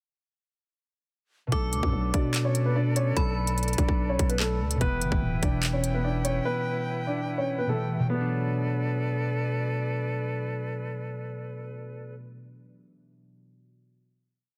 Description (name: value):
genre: hip hop, drill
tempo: 146 BPM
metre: 4/4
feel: half-time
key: B minor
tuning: A4 = 438 Hz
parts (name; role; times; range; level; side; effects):
- dark baby grand piano; melody; 1.5-9.3 s; A3 to D5; -34 LUFS; equal; low-pass filter
- metallic FM bell; second line; 1.5-4.8 s; B5 to D6; -38 LUFS; equal; chorus, tape echo
- concert harp; accompaniment; 1.5-12.4 s; B2 to E4; -33 LUFS; equal; low-pass filter
- bright flute section; sustained chords; 1.5-12.1 s; E4 to G5; -38 LUFS; equal; none
- growling 808-style bass; bass; 1.5-6.4 s; D1 to B2; -31 LUFS; equal; none
- drill drum kit; drums; 1.5-6.3 s; handclaps, hi-hat, kick drum; -30 LUFS; equal; none
room: light reverb, small room ambience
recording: dense, heavily limited modern master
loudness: -28 LUFS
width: mono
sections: 1.5-8.1 hook; 8.1-11.4 final chord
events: none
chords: 1.5 Bm7; 4.8 Em; 8.1 Bm7